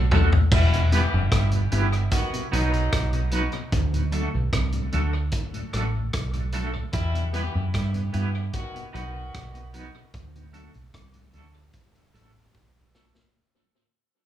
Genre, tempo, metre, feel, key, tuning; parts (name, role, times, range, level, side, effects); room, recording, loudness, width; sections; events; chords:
roots reggae; 75 BPM; 4/4; straight; A4 = 442 Hz
clear horn section; second line; 0.0-9.7 s; B2 to G4; -32 LUFS; equal; analog delay
deep dub fingered electric bass; bass; 0.0-13.3 s; E1 to G2; -24 LUFS; equal
clean electric guitar; accompaniment; 0.1-13.1 s; A3 to B4; -32 LUFS; right 2 dB; tremolo, analog delay
mellow tonewheel organ; accompaniment; 0.1-13.2 s; D2 to E4; -33 LUFS; left 3 dB; slow rotary speaker, analog delay
vintage drum kit; drums; 0.1-13.3 s; crash cymbal, hi-hat, kick drum, rim click, snare drum, toms; -26 LUFS; equal; analog delay
little or no reverb; echo-heavy mix, small room reverb; -22 LUFS; side -11 dB against mid
0.5-13.3 A section
drum fill 0.0-0.5, 12.5-13.3; fade-out 0.5-13.3
0.0 D; 0.5 Em; 2.1 B; 3.7 D; 6.9 Em; 8.5 B; 10.1 D